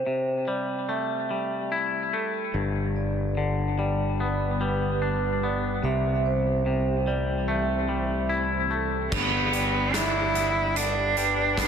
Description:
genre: post-rock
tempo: 73 BPM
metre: 4/4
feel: straight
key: G major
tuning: A4 = 441 Hz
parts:
  - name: twangy electric guitar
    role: arpeggios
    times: 0.0-11.7 s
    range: G2 to G4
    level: -28 LUFS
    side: left 4 dB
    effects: digital delay
  - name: vibraphone with medium mallets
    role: arpeggios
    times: 0.0-11.7 s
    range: A4 to E5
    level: -31 LUFS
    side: right 4 dB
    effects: digital delay
  - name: ethereal airy pad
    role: sustained chords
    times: 3.4-11.7 s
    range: D3 to G5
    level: -36 LUFS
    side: equal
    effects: ensemble chorus, built-in reverb, tremolo
  - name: growling fingered electric bass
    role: bass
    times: 2.5-11.7 s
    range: G1 to C2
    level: -28 LUFS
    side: equal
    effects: overdrive
  - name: clear cello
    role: melody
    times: 9.1-11.7 s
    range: B3 to E4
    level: -24 LUFS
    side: right 2 dB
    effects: digital delay
  - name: big rock drum kit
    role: drums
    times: 9.1-11.7 s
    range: crash cymbal, hi-hat, kick drum, snare drum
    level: -28 LUFS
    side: right 2 dB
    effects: none
room: moderate lush hall reverb, RT60 2.9 s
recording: none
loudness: -23 LUFS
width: side -7 dB against mid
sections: 0.0-9.1 A section; 9.1-11.7 B section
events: none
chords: 0.0 C6; 2.5 G; 5.8 C6; 9.1 G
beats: 0.06 0.88 1.71 | 2.54 3.37 4.19 5.01 | 5.84 6.66 7.48 8.30 | 9.12 9.94 10.76 11.57

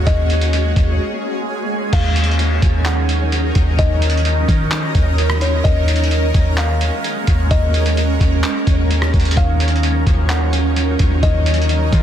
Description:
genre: hip hop, atmospheric cloud-rap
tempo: 129 BPM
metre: 4/4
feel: half-time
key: Eb minor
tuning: A4 = 440 Hz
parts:
  - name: kalimba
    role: melody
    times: 0.0-12.0 s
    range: Db5 to Gb5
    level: -26 LUFS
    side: left 4 dB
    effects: low-pass filter, ping-pong delay
  - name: shimmering ambient pad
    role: sustained chords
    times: 0.0-12.0 s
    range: Eb3 to Bb4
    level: -22 LUFS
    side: right 3 dB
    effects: chorus, built-in reverb, phaser, sidechain pumping
  - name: soft 808-style bass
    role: bass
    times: 0.0-12.0 s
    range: Eb2 to Eb3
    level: -16 LUFS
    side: equal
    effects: none
  - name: twinkling granular texture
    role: texture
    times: 0.0-12.0 s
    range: F3 to Eb5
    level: -30 LUFS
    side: left 1 dB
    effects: built-in reverb
  - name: trip hop sampler-style drum kit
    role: drums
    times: 0.1-12.0 s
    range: crash cymbal, handclaps, hi-hat, kick drum, rim click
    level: -19 LUFS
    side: equal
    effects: soft clipping on snare
  - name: electric guitar at the edge of break-up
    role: arpeggios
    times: 9.4-12.0 s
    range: Eb3 to F4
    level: -27 LUFS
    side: left 9 dB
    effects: low-pass filter, ping-pong delay
room: little or no reverb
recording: dense, heavily limited modern master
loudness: -14 LUFS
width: side -10 dB against mid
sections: 0.0-1.9 A section; 1.9-12.0 B section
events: break 1.0-1.9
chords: 0.0 Ab9sus4/Eb; 1.9 Ebm9; 5.6 Ab9sus4/Eb; 9.4 Ebm9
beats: | 0.07 0.53 1.00 1.46 | 1.93 2.39 2.86 3.32 | 3.79 4.25 4.72 5.18 | 5.65 6.11 6.58 7.04 | 7.51 7.97 8.44 8.90 | 9.37 9.83 10.30 10.76 | 11.23 11.69

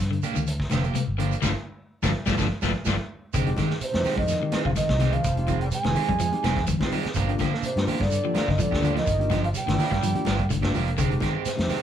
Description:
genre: afrobeat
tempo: 126 BPM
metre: 4/4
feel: straight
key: F dorian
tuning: A4 = 437 Hz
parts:
  - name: fingered electric bass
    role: bass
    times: 0.0-11.7 s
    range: F1 to G2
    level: -27 LUFS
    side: equal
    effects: none
  - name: vintage drum kit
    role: drums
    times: 0.0-11.8 s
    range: hi-hat, kick drum, snare drum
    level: -30 LUFS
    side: equal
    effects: none
  - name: electric guitar at the edge of break-up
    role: arpeggios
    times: 0.1-11.3 s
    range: C3 to G3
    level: -28 LUFS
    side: left 4 dB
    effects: none
  - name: electric guitar at the edge of break-up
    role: stabs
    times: 0.2-11.8 s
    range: Eb3 to G4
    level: -30 LUFS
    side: right 6 dB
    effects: none
  - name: shekere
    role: percussion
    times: 0.2-11.8 s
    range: none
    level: -36 LUFS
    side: right 6 dB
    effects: none
  - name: congas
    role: percussion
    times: 0.3-11.8 s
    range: none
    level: -34 LUFS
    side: right 1 dB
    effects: none
  - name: bell-like tine electric piano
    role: accompaniment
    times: 3.5-11.8 s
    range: Ab3 to G4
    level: -33 LUFS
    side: left 5 dB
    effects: none
  - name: hollow alto ocarina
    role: melody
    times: 3.8-11.8 s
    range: C5 to Ab5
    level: -28 LUFS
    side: right 2 dB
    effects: none
  - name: bright trombone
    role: second line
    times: 3.8-11.8 s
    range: C3 to Ab3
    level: -37 LUFS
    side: right 4 dB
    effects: none
  - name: brilliant trombone section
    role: second line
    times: 3.8-11.8 s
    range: C3 to Ab3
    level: -38 LUFS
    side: left 2 dB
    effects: none
room: moderate studio reverb, RT60 0.5 s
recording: band playing live in one room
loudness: -22 LUFS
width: side -10 dB against mid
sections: 0.0-3.3 A section; 3.3-11.8 B section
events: band accent 1.4-3.3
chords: 0.0 Gm7; 3.3 Fm9; 7.2 Gm7; 11.0 Fm9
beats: 0.00 0.47 0.95 | 1.43 1.91 2.38 2.86 | 3.34 3.82 4.29 4.77 | 5.25 5.73 6.20 6.68 | 7.16 7.64 8.11 8.59 | 9.07 9.54 10.02 10.50 | 10.98 11.45

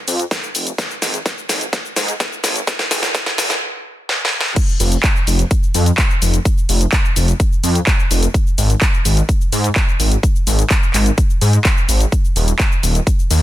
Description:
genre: EDM, festival progressive house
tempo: 127 BPM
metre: 4/4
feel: straight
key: unclear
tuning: A4 = 440 Hz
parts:
  - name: wide detuned saw bass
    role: bass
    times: 0.1-13.4 s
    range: Eb1 to Ab2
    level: -15 LUFS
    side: equal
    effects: chorus, sidechain pumping, high-pass filter
  - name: big-room dance drum kit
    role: drums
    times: 0.1-13.4 s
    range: crash cymbal, handclaps, hi-hat, shaker, snare drum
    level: -19 LUFS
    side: equal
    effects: high-pass filter on hats, high-pass filter on snare, high-pass filter on perc, high-pass filter on cymbals
  - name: electronic kick drum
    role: drums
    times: 0.3-13.2 s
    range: none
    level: -15 LUFS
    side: equal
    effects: high-pass filter on kick
room: digital ambience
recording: dense, heavily limited modern master, high-pass filter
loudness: -14 LUFS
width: side -14 dB against mid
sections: 0.0-4.6 A section; 4.6-13.4 B section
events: build-up 0.0-4.6; drum fill 0.0-3.6, 4.1-4.6; stop 3.6-4.6; drop 4.6-13.4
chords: none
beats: 0.31 | 0.79 1.26 1.73 2.20 | 2.67 3.15 3.62 4.09 | 4.56 5.04 5.51 5.98 | 6.45 6.93 7.40 7.87 | 8.34 8.82 9.29 9.76 | 10.23 10.71 11.18 11.65 | 12.12 12.60 13.07

